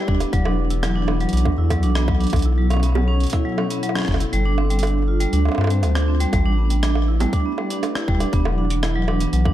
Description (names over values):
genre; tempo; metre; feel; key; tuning
IDM; 120 BPM; 4/4; straight; unclear; A4 = 439 Hz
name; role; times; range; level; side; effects
warbly tape-like pad; sustained chords; 0.0-9.5 s; B2 to D5; -28 LUFS; left 1 dB; chorus, built-in reverb
vibraphone with medium hard mallets; arpeggios; 0.0-9.5 s; F#3 to F4; -24 LUFS; right 2 dB; vintage 12-bit sampler grit, ping-pong delay
round analog bass; bass; 0.1-9.5 s; E1 to G2; -20 LUFS; equal; none
electronic kick drum; drums; 0.1-9.5 s; none; -21 LUFS; equal; overdrive
jungle sampler-style drum kit; drums; 0.2-9.5 s; bongos, hi-hat, rim click; -28 LUFS; right 2 dB; ping-pong delay
room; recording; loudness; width
light reverb; dark, warm production; -17 LUFS; side -12 dB against mid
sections
0.0-9.5 A section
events
kick drops out 4.3-6.3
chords
0.3 E9sus4; 2.3 B9sus4; 4.3 G9sus4; 6.3 A9sus4; 8.3 E9sus4